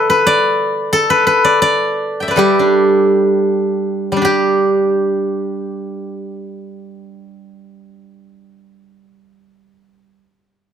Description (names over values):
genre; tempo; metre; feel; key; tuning
chinese traditional, Chinese solo plucked strings; 55-91 BPM; 2/4; rubato; G gong mode; A4 = 440 Hz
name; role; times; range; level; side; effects
steel-string zither; solo; 0.0-10.2 s; G3 to G5; -13 LUFS; equal; none
room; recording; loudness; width
moderate studio reverb, RT60 0.6 s; none; -12 LUFS; side -8 dB against mid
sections
0.0-4.2 A section; 4.2-8.4 B section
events
slowing down 0.9-4.2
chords
none